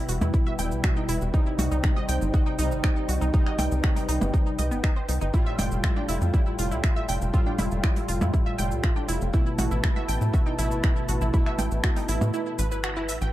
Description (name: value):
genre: melodic techno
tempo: 120 BPM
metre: 4/4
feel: straight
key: unclear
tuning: A4 = 439 Hz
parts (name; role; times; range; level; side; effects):
- dark analog pad; sustained chords; 0.0-13.3 s; Eb4 to A5; -36 LUFS; right 1 dB; chorus, sidechain pumping
- analog synth brass; stabs; 0.0-12.6 s; A2 to F4; -31 LUFS; left 1 dB; chorus, sidechain pumping, tape echo
- wide unison pluck; arpeggios; 0.1-13.3 s; B3 to G5; -33 LUFS; right 1 dB; cassette tape, sidechain pumping, tape echo
- tight sequencer bass; bass; 0.1-13.3 s; E1 to A2; -26 LUFS; equal; sidechain pumping
- techno drum kit; drums; 0.1-13.3 s; finger snaps, hi-hat, percussion blips, shaker; -32 LUFS; right 1 dB; sidechain pumping on perc, sidechain pumping on hats, tape echo
- electronic kick drum; drums; 0.3-11.9 s; none; -23 LUFS; equal; none
room: light reverb, digital ambience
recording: echo-heavy mix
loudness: -22 LUFS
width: side -14 dB against mid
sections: 0.0-13.3 A section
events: break 12.3-13.3; band accent 12.8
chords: 0.0 Em; 1.3 Cm; 5.3 Fadd9; 9.3 Asus2